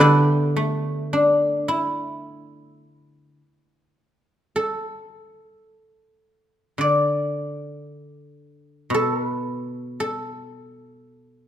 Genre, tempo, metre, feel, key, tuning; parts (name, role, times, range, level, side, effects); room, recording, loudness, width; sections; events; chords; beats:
chinese traditional, Chinese solo plucked strings; 51-59 BPM; 4/4; rubato; D zhi mode; A4 = 439 Hz
guzheng; solo; 0.0-11.5 s; B2 to A5; -19 LUFS; equal
moderate recital hall reverb, RT60 1.6 s; minimal, uncompressed stereo recording; -20 LUFS; side -11 dB against mid
0.0-4.6 A section; 4.6-11.5 B section
| 0.01 1.13 2.25 3.40 | 4.56 5.70 6.81 7.88 | 8.93 9.97 11.00